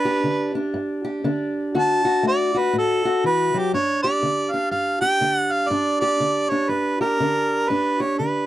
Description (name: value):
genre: acoustic country blues, solo or duo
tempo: 121 BPM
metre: 4/4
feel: swing 61% on 8ths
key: G major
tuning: A4 = 438 Hz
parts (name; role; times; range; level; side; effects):
- warm harmonica; melody; 0.0-8.5 s; G4 to A5; -21 LUFS; right 2 dB; none
- fingerpicked steel-string acoustic guitar; accompaniment; 0.0-8.5 s; G2 to G4; -22 LUFS; left 1 dB; none
room: little or no reverb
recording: dry, close 1970s-style studio recording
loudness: -19 LUFS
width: side -14 dB against mid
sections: 0.0-3.7 A section; 3.7-8.5 B section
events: harmonica solo 0.0-3.7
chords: 0.0 G; 1.7 D; 3.7 G5